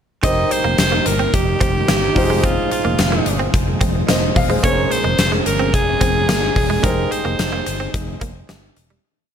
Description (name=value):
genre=1980s-style pop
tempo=109 BPM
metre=4/4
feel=straight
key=unclear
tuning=A4 = 439 Hz
part: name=raspy alto saxophone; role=melody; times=0.2-7.9 s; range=F4 to Eb5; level=-21 LUFS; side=right 2 dB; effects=none
part: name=warm baby grand piano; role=accompaniment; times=0.2-9.1 s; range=Db4 to F5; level=-24 LUFS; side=left 1 dB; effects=none
part: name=soft string machine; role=sustained chords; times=0.2-9.0 s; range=Bb2 to Eb4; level=-26 LUFS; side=equal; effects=ensemble chorus
part: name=direct-recorded clean electric guitar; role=riff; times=0.2-9.0 s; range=G3 to C4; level=-26 LUFS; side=right 5 dB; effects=wide subtle chorus
part: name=sustaining fretless electric bass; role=bass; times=0.2-9.0 s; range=E1 to G1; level=-22 LUFS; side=equal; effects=lush chorus
part: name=huge arena drum kit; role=drums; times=0.2-8.9 s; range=hi-hat, kick drum, snare drum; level=-19 LUFS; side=left 1 dB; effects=gated reverb
room=light reverb, small room reverb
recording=none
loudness=-15 LUFS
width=side -8 dB against mid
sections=0.2-9.0 pre-chorus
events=fade-out 6.8-9.0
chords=0.2 Cm7/F; 2.2 Fm7; 4.6 Bbm9/F; 6.8 Abmaj7/F